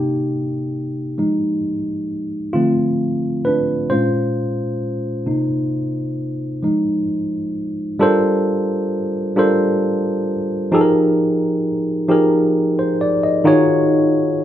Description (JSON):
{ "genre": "R&B", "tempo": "44 BPM (dotted quarters)", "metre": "6/8", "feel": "straight", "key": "G phrygian from 8.0 s", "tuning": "A4 = 438 Hz", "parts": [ { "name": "tine electric piano", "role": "solo", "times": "0.0-14.4 s", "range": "Bb2 to Eb5", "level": "-16 LUFS", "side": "equal", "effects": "none" } ], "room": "wet large studio reverb, RT60 1.0 s", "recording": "band playing live in one room", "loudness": "-16 LUFS", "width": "side -11 dB against mid", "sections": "0.0-8.0 A section; 8.0-14.4 B section", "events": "tine electric piano solo 0.0-8.0", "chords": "0.0 Cm7; 1.2 Fm7; 2.5 Dm7; 3.9 Bbm9; 5.3 Cm7; 6.6 Fm7; 8.0 Gm11; 10.7 Fm11; 13.5 Ebm11" }